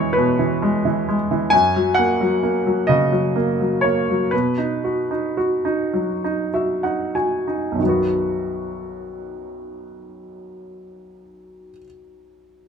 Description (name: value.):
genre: classical, lyrical solo piano.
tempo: 30-44 BPM (dotted quarters).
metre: 6/8.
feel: rubato.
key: B major.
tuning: A4 = 440 Hz.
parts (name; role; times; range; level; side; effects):
clear baby grand piano; solo; 0.0-12.7 s; B1 to G#5; -18 LUFS; equal; none.
room: moderate studio reverb, RT60 0.7 s.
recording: minimal, uncompressed stereo recording.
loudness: -17 LUFS.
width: side -6 dB against mid.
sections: 0.0-7.8 A section; 7.8-11.6 B section.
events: slowing down 1.5-7.8; grand piano fill 5.9-7.8.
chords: 0.0 E; 1.5 F#; 4.3 B.